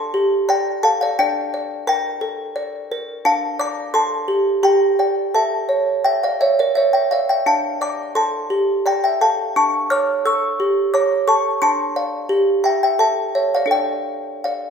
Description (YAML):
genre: classical, lullaby for music box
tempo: 86 BPM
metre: 3/4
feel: straight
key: D minor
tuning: A4 = 441 Hz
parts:
  - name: music box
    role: solo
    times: 0.0-14.7 s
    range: D4 to F6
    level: -16 LUFS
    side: equal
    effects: none
room: moderate recital hall reverb, RT60 1.4 s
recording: recorded in a church or concert hall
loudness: -16 LUFS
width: side -6 dB against mid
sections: 0.0-14.7 A section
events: none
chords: 0.0 Dm; 1.2 Gm/D; 3.2 Dm; 4.6 Gm; 5.3 A; 7.4 Dm; 9.5 A7/D; 11.6 Dm; 12.3 Gm69; 13.0 A; 13.7 Dm